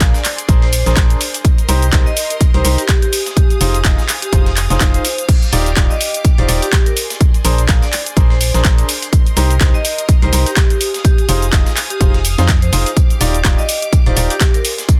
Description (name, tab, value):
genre	piano house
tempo	125 BPM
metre	4/4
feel	swing 57% on 16ths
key	Eb major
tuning	A4 = 440 Hz
part	bright studio violin section	sustained chords	0.0-15.0 s	G4 to Eb6	-32 LUFS	equal	sidechain pumping
part	bright concert grand piano	riff	0.0-14.3 s	D4 to F5	-25 LUFS	equal	sidechain pumping, digital delay
part	organ-like FM bass	bass	0.0-14.3 s	Eb1 to F2	-18 LUFS	equal	sidechain pumping
part	breakbeat sampler-style drum kit	drums	0.0-15.0 s	hi-hat, snare drum, tambourine	-30 LUFS	equal	none
part	electronic kick drum	drums	0.0-15.0 s	none	-14 LUFS	equal	none
part	house drum kit	drums	0.0-15.0 s	crash cymbal, handclaps, hi-hat, shaker	-21 LUFS	equal	none
part	vibraphone with medium hard mallets	melody	0.1-14.6 s	G4 to Eb5	-26 LUFS	equal	digital delay
room	little or no reverb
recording	dense, heavily limited modern master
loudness	-14 LUFS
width	mono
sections	0.0-15.0 A section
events	none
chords	0.0 Bb9; 1.4 Cm7; 3.1 Fm7; 5.3 Ebmaj9; 7.0 Bb9; 9.1 Cm7; 10.8 Fm7; 13.0 Ebmaj9